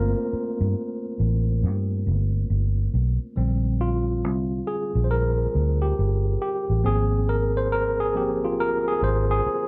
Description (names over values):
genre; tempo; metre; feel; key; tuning
R&B, neo-soul; 69 BPM; 4/4; swing 63% on 16ths; Bb mixolydian from 3.4 s; A4 = 440 Hz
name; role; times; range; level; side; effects
tine electric piano; accompaniment; 0.0-9.7 s; D3 to C5; -28 LUFS; equal; overdrive
vintage muted fingered electric bass; bass; 0.0-9.5 s; G1 to G2; -25 LUFS; equal; none
room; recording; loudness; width
light reverb, digital ambience; dark, warm production; -24 LUFS; mono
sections
0.0-3.4 A section; 3.4-9.7 B section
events
tine electric piano solo 0.0-3.4, 3.4-9.7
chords
0.0 Gm9; 3.4 Bb6; 6.8 Ab6